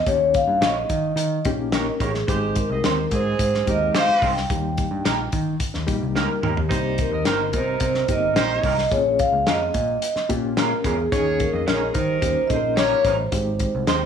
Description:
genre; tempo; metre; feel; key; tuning
uptempo 1960s-style soul; 109 BPM; 4/4; straight; unclear; A4 = 440 Hz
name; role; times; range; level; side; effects
vibraphone with soft mallets; melody; 0.0-14.1 s; G4 to G5; -22 LUFS; equal; none
reed electric piano; accompaniment; 0.1-14.1 s; G3 to Bb4; -28 LUFS; left 6 dB; fast tremolo
overdriven picked electric bass; bass; 0.1-14.1 s; G1 to Eb3; -27 LUFS; equal; none
warm soul drum kit; drums; 0.1-14.0 s; hi-hat, kick drum, snare drum, toms; -26 LUFS; left 1 dB; none
electric guitar through a small old amp; stabs; 0.6-14.0 s; G3 to Db5; -28 LUFS; right 8 dB; ensemble chorus
warm horn section; second line; 2.3-13.2 s; Eb3 to Eb5; -28 LUFS; right 4 dB; none
room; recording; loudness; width
light reverb, small room ambience; studio reverb; -19 LUFS; side -7 dB against mid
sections
0.0-14.1 A section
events
drum fill 6.2-6.7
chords
0.1 Eb7; 2.3 Abmaj7; 4.5 Eb; 6.7 Cm7; 8.9 Bbm7; 11.1 Eb7sus4; 12.2 Eb7; 13.3 Abmaj7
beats
| 0.07 0.62 1.17 1.73 | 2.28 2.84 3.39 3.94 | 4.50 5.05 5.60 6.16 | 6.71 7.26 7.81 8.36 | 8.92 9.47 10.02 10.57 | 11.12 11.67 12.22 12.78 | 13.33 13.88

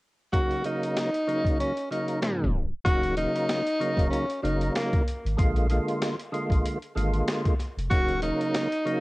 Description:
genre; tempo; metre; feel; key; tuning
hip hop, boom-bap hip-hop; 95 BPM; 4/4; swing 57% on 16ths; Eb minor; A4 = 441 Hz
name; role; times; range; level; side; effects
breathy tenor saxophone; melody; 0.3-9.0 s; Bb3 to Gb4; -28 LUFS; equal; high-pass filter, low-pass filter, cassette tape
percussive tonewheel organ; accompaniment; 0.3-9.0 s; Db3 to F4; -29 LUFS; right 1 dB; overdrive, chorus vibrato, slow rotary speaker, cassette tape, high-pass filter, low-pass filter
boom bap sampler-style drum kit; drums; 0.3-9.0 s; hi-hat, kick drum, snare drum; -27 LUFS; equal; vintage 12-bit sampler grit
saturated sub bass; bass; 2.9-8.3 s; Eb1 to Bb1; -28 LUFS; equal; none
room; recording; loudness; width
light reverb; home recording on cassette, tape stop; -24 LUFS; side -21 dB against mid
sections
0.3-2.9 A section; 2.9-9.0 B section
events
tape stop 2.2-2.9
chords
0.3 Ebm7; 5.4 Bb7; 7.9 Ebm7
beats
| 0.33 0.96 1.59 2.23 | 2.86 3.49 4.12 4.75 | 5.38 6.01 6.65 7.28 | 7.91 8.54

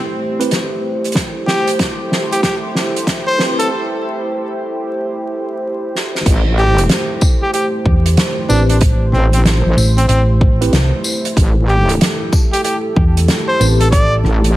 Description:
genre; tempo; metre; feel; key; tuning
glitch hop; 94 BPM; 4/4; swing 64% on 16ths; A minor; A4 = 440 Hz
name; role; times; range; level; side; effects
dark analog pad; sustained chords; 0.0-14.6 s; A3 to C5; -21 LUFS; right 1 dB; chorus, sidechain pumping
mellow tine electric piano; stabs; 0.4-3.7, 8.5-13.9 s; C4 to B4; -22 LUFS; right 1 dB; medium stereo tremolo, sidechain pumping, low-pass filter, tape echo
soft-mallet drum kit; drums; 0.4-14.5 s; crash cymbal, hi-hat, rim click, snare drum, tambourine; -19 LUFS; right 1 dB; none
electronic kick drum; drums; 1.2-14.1 s; none; -14 LUFS; equal; none
bright trumpet; melody; 1.5-14.2 s; C4 to D5; -20 LUFS; equal; tape echo
wobble bass; bass; 6.3-14.6 s; A1; -13 LUFS; equal; chorus
hollow-body short-scale fingered electric bass; bass; 7.9-14.2 s; A1 to E2; -13 LUFS; equal; tube saturation
room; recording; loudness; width
light reverb; vinyl crackle, high-pass filter; -12 LUFS; side -15 dB against mid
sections
0.0-6.3 A section; 6.3-14.6 B section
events
build-up 0.0-6.3; drum fill 0.0-3.7, 5.9-6.3; filter sweep on tine electric piano 0.0-6.3; break 3.7-6.3; drop 6.3-14.6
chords
0.0 Am7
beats
0.51 | 1.15 1.79 2.43 3.07 | 3.71 4.34 4.98 5.62 | 6.26 6.90 7.54 8.17 | 8.81 9.45 10.09 10.73 | 11.37 12.00 12.64 13.28 | 13.92 14.56

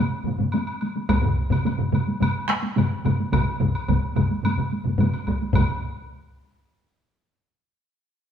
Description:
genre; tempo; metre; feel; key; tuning
japanese traditional, taiko drum ensemble; 108 BPM; 4/4; straight; none; none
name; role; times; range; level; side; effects
taiko ensemble; percussion; 0.2-6.1 s; none; -26 LUFS; left 1 dB; none
taiko ensemble; percussion; 0.3-5.8 s; none; -26 LUFS; equal; none
taiko ensemble; percussion; 0.3-6.1 s; none; -26 LUFS; equal; none
woodblock; percussion; 0.5-5.8 s; none; -33 LUFS; left 1 dB; none
taiko ensemble; percussion; 1.1-5.8 s; none; -26 LUFS; equal; none
room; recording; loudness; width
wet stone room reverb, RT60 1.3 s; band playing live in one room; -21 LUFS; side -8 dB against mid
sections
0.0-5.6 A section; 5.6-7.8 B section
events
none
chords
none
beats
0.53 | 1.09 1.66 2.22 2.77 | 3.33 3.89 4.45 5.00 | 5.55

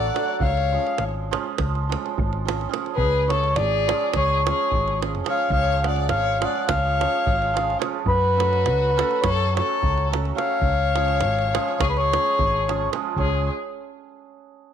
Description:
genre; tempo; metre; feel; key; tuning
balkan folk, Balkan wedding band; 211 BPM (eighths); 9/8; straight; C# phrygian dominant; A4 = 440 Hz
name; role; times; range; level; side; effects
mellow accordion; melody; 0.0-13.5 s; B4 to F#5; -23 LUFS; equal; none
warm violin; second line; 0.0-13.5 s; F#4 to D5; -28 LUFS; left 12 dB; none
hammered dulcimer; accompaniment; 0.0-13.5 s; E#3 to A4; -29 LUFS; right 11 dB; none
hollow-body short-scale fingered electric bass; bass; 0.0-13.5 s; G#1 to F#2; -25 LUFS; left 1 dB; none
davul; percussion; 0.2-13.5 s; none; -28 LUFS; right 3 dB; none
room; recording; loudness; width
light reverb, small room reverb; 1960s-style stereo with parts hard left and right; -20 LUFS; side -8 dB against mid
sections
0.0-3.0 A section; 3.0-13.2 B section; 13.2-14.7 C section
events
none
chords
0.4 C#; 8.1 F#m; 10.6 C#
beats
0.11 | 0.40 0.68 0.96 1.25 1.53 1.81 2.10 2.38 2.67 | 2.95 3.23 3.52 3.80 4.09 4.37 4.65 4.94 5.22 | 5.50 5.79 6.07 6.36 6.64 6.92 7.21 7.49 7.78 | 8.06 8.35 8.63 8.91 9.20 9.48 9.77 10.05 10.33 | 10.62 10.90 11.19 11.47 11.75 12.04 12.32 12.61 12.89 | 13.18 13.46

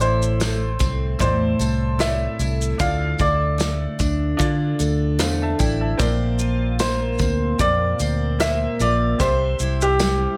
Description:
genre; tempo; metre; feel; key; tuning
acoustic pop; 75 BPM; 4/4; swing 55% on 16ths; unclear; A4 = 442 Hz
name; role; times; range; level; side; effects
warm upright piano; melody; 0.0-10.4 s; G4 to F5; -26 LUFS; equal; plate reverb, delay
clear concert grand piano; accompaniment; 0.0-10.4 s; A3 to A5; -34 LUFS; equal; plate reverb
picked steel-string acoustic guitar; accompaniment; 0.0-10.4 s; A2 to C5; -27 LUFS; equal; double-tracked
vintage muted fingered electric bass; bass; 0.0-10.3 s; A1 to D3; -25 LUFS; equal; none
natural country drum kit; drums; 0.0-10.2 s; kick drum, shaker, snare drum; -27 LUFS; equal; none
tambourine; percussion; 0.4-10.2 s; none; -38 LUFS; equal; none
room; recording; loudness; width
moderate studio reverb, RT60 0.7 s; none; -21 LUFS; mono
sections
0.0-10.4 A section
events
none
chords
0.0 Am; 2.8 Dmadd9; 6.0 Bbadd9; 9.2 C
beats
0.41 1.21 2.00 | 2.80 3.60 4.40 5.20 | 6.00 6.80 7.60 8.40 | 9.20 10.00

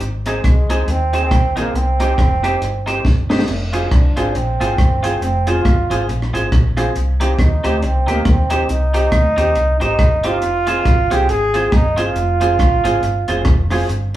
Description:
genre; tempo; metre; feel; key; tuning
ska; 138 BPM; 4/4; swing 58% on 8ths; unclear; A4 = 440 Hz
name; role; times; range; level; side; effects
vintage muted fingered electric bass; bass; 0.0-14.2 s; F1 to Eb2; -19 LUFS; equal; none
compact cocktail drum kit; drums; 0.0-14.0 s; crash cymbal, hi-hat, kick drum, rim click, snare drum; -18 LUFS; equal; none
twangy electric guitar; accompaniment; 0.3-13.8 s; Eb4 to C5; -24 LUFS; right 2 dB; dub echo
dark upright piano; stabs; 0.3-13.8 s; C4 to Ab4; -24 LUFS; equal; none
clear trombone; melody; 0.5-13.7 s; Ab3 to Ab4; -19 LUFS; right 2 dB; none
room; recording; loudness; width
moderate studio reverb, RT60 0.8 s; band playing live in one room, small room reverb; -14 LUFS; side -14 dB against mid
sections
0.0-3.5 A section; 3.5-14.2 B section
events
drum fill 3.0-3.5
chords
0.0 Ab; 1.7 Cm; 3.5 Fm; 7.0 Cm; 10.4 Fm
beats
| 0.01 0.44 0.88 1.31 | 1.75 2.18 2.61 3.05 | 3.48 3.92 4.35 4.78 | 5.22 5.65 6.08 6.52 | 6.95 7.39 7.82 8.25 | 8.69 9.12 9.56 9.99 | 10.43 10.86 11.29 11.73 | 12.16 12.60 13.03 13.46 | 13.90

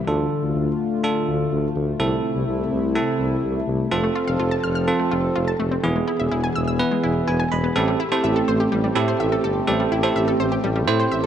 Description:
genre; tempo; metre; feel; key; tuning
synth-pop; 125 BPM; 4/4; straight; A minor; A4 = 440 Hz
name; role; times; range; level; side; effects
warm analog pad; sustained chords; 0.0-11.3 s; C3 to A4; -24 LUFS; left 2 dB; chorus
wide unison pluck; arpeggios; 0.0-0.1, 3.9-11.3 s; E3 to F6; -27 LUFS; left 2 dB; slapback echo
bell-like tine electric piano; accompaniment; 0.1-11.3 s; B3 to B5; -24 LUFS; right 4 dB; auto-pan
mellow tuba; bass; 0.1-11.3 s; E1 to A2; -24 LUFS; equal; none
room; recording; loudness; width
moderate plate reverb, RT60 2.9 s; dark, warm production; -19 LUFS; side -9 dB against mid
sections
0.1-7.8 A section; 7.8-11.3 B section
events
tine electric piano fill 6.8-7.8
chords
0.1 Dm; 2.0 C6; 3.9 F; 5.8 E; 7.8 Am7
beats
| 0.08 0.56 1.04 1.52 | 2.00 2.48 2.96 3.44 | 3.92 4.40 4.88 5.36 | 5.84 6.32 6.80 7.28 | 7.76 8.24 8.72 9.20 | 9.68 10.16 10.64 11.12

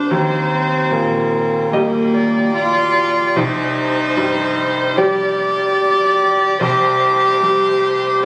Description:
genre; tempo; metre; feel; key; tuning
neoclassical piano and strings; 74 BPM; 4/4; rubato; C minor; A4 = 435 Hz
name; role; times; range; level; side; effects
clear cello; second line; 0.0-8.2 s; Bb3 to G4; -19 LUFS; equal; none
bright upright piano; accompaniment; 0.0-8.2 s; C2 to Eb5; -22 LUFS; equal; none
dark viola; accompaniment; 0.0-8.2 s; Bb4 to D5; -23 LUFS; equal; none
room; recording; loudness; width
moderate plate reverb, RT60 2.5 s; recorded on a phone in the room, studio reverb; -16 LUFS; mono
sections
0.0-8.2 A section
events
none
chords
0.1 Eb; 3.4 Cmadd9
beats
| 0.12 0.92 1.73 2.56 | 3.37 4.17 4.98 5.79 | 6.60 7.42 8.23

